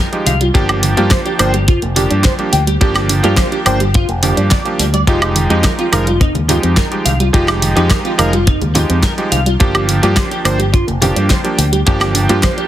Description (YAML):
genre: nu-disco, nu disco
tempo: 106 BPM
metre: 4/4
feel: straight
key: unclear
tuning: A4 = 437 Hz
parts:
  - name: clear electric grand piano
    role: accompaniment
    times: 0.0-12.7 s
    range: F3 to C5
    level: -17 LUFS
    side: right 2 dB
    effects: sidechain pumping, analog delay
  - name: soft round pluck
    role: arpeggios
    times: 0.0-12.6 s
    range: D3 to G4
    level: -22 LUFS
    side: right 2 dB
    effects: chorus, sidechain pumping, tape echo
  - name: electric guitar at the edge of break-up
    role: riff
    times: 0.0-12.6 s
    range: G3 to G5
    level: -20 LUFS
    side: equal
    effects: analog chorus, analog delay
  - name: pop drum kit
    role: drums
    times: 0.1-12.7 s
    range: hi-hat, snare drum, woodblock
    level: -18 LUFS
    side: right 1 dB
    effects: none
  - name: fingered electric bass with an envelope filter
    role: bass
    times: 0.3-12.4 s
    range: F1 to G2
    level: -16 LUFS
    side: equal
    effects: sidechain pumping
  - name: kick drum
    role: drums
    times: 0.5-12.6 s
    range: none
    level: -14 LUFS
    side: equal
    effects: none
  - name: congas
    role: percussion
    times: 6.3-11.1 s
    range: none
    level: -22 LUFS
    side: left 2 dB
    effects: none
room: studio ambience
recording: heavily compressed radio sound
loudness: -11 LUFS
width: side -12 dB against mid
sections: 0.0-12.7 A section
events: none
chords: 0.0 Fm9; 0.5 Gm7; 5.1 Fm9; 9.6 Gm7